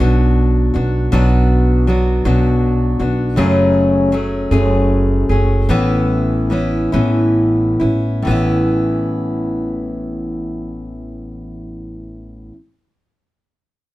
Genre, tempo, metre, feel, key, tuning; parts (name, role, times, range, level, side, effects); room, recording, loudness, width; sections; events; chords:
acoustic folk duo or small band; 43-53 BPM (dotted quarters); 6/8; straight; A major; A4 = 439 Hz
picked steel-string acoustic guitar; accompaniment; 0.0-12.6 s; F#2 to G#4; -16 LUFS; left 1 dB
upright bass; bass; 0.0-12.5 s; F#1 to B1; -18 LUFS; right 1 dB
light reverb; close, detailed microphones; -13 LUFS; side -17 dB against mid
0.0-8.3 A section; 8.3-11.0 B section
slowing down 3.4-8.3
0.0 Bm; 3.4 F#madd9; 5.7 Aadd9